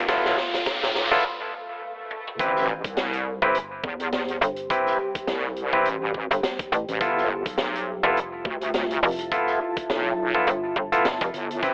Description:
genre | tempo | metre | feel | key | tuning
glitch hop | 104 BPM | 4/4 | swing 56% on 16ths | unclear | A4 = 440 Hz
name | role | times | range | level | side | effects
warm analog pad | sustained chords | 0.0-2.4 s | F3 to F4 | -38 LUFS | equal | chorus, sidechain pumping
wobble bass | bass | 0.0-11.7 s | F1 to E2 | -30 LUFS | equal | chorus, tube saturation, high-pass filter
riser and swell | sound effects | 0.0-2.4 s | none | -33 LUFS | equal | none
deep dark ambient pad | texture | 0.0-11.7 s | F4 to B5 | -35 LUFS | equal | chorus, built-in reverb, sidechain pumping
auto-wah clav | stabs | 0.1-11.7 s | B3 to B4 | -27 LUFS | equal | overdrive, sidechain pumping, tape echo
electronic kick drum | drums | 0.1-11.7 s | none | -34 LUFS | equal | overdrive
open jazz drum kit | drums | 0.1-11.7 s | hi-hat, snare drum, toms | -32 LUFS | equal | none
slap-like FM bass | bass | 3.4-11.3 s | F1 to A1 | -26 LUFS | equal | tube saturation
room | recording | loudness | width
light reverb, studio reverb | high-pass filter, telephone sound | -25 LUFS | mono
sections
0.0-2.4 A section; 2.4-11.7 B section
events
build-up 0.0-2.4; drum fill 0.0-1.2, 2.1; riser 0.0-1.2; break 1.2-2.4; swell 1.2-2.4; drop 2.4-11.7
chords
0.0 G13 (rootless); 2.4 Am9; 7.0 G13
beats
| 0.09 0.66 1.24 1.82 | 2.40 2.97 3.55 4.13 | 4.70 5.28 5.86 6.43 | 7.01 7.59 8.16 8.74 | 9.32 9.89 10.47 11.05 | 11.63

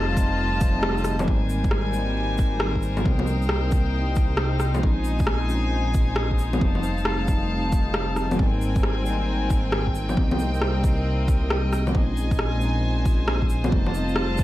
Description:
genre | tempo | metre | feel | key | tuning
future garage | 135 BPM | 4/4 | swing 65% on 16ths | unclear | A4 = 440 Hz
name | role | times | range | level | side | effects
tine electric piano | accompaniment | 0.0-14.4 s | G3 to Eb4 | -30 LUFS | left 1 dB | vintage 12-bit sampler grit, sidechain pumping, digital delay
warm studio string section | sustained chords | 0.0-14.4 s | G3 to A5 | -29 LUFS | left 2 dB | sidechain pumping
swelling detuned saw bass | bass | 0.0-14.4 s | F1 to C2 | -25 LUFS | equal | sidechain pumping
electronic cabasa, shaker, rim click and bongos | drums | 0.2-14.4 s | none | -27 LUFS | equal | overdrive
electronic kick drum | drums | 0.2-14.4 s | none | -23 LUFS | equal | overdrive
room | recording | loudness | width
light reverb | vinyl crackle | -20 LUFS | side -15 dB against mid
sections
0.0-1.3 A section; 1.3-14.4 B section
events
band accent 0.8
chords
0.0 F7; 1.3 Abmaj9; 3.1 Cm7; 4.8 Bbm11; 6.6 F7; 8.4 Abmaj9; 10.2 Cm7; 11.9 Bbm11; 13.7 F7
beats
0.38 0.83 | 1.27 1.72 2.16 2.61 | 3.05 3.50 3.94 4.38 | 4.83 5.27 5.72 6.16 | 6.61 7.05 7.50 7.94 | 8.38 8.83 9.27 9.72 | 10.16 10.61 11.05 11.50 | 11.94 12.38 12.83 13.27 | 13.72 14.16

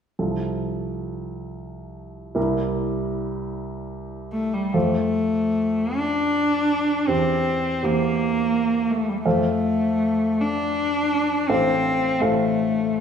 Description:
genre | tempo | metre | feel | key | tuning
classical, romantic duo for cello and grand piano | 67-85 BPM | 3/4 | rubato | F major | A4 = 440 Hz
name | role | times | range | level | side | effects
clear baby grand piano | accompaniment | 0.2-13.0 s | A1 to F5 | -25 LUFS | right 1 dB | none
clear cello | melody | 4.3-13.0 s | G3 to D4 | -21 LUFS | left 1 dB | none
room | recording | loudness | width
wet recital hall reverb, RT60 1.6 s | heard from further back in the room | -20 LUFS | side -7 dB against mid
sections
0.2-4.8 A section; 4.8-13.0 B section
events
none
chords
0.2 F/C; 2.4 C7; 4.8 F; 7.1 C7/E; 9.3 F; 11.5 F/A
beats
| 0.18 0.94 1.66 | 2.37 3.10 3.90 | 4.75 5.55 6.36 | 7.09 7.84 8.55 | 9.25 10.01 10.77 | 11.49 12.20 12.91

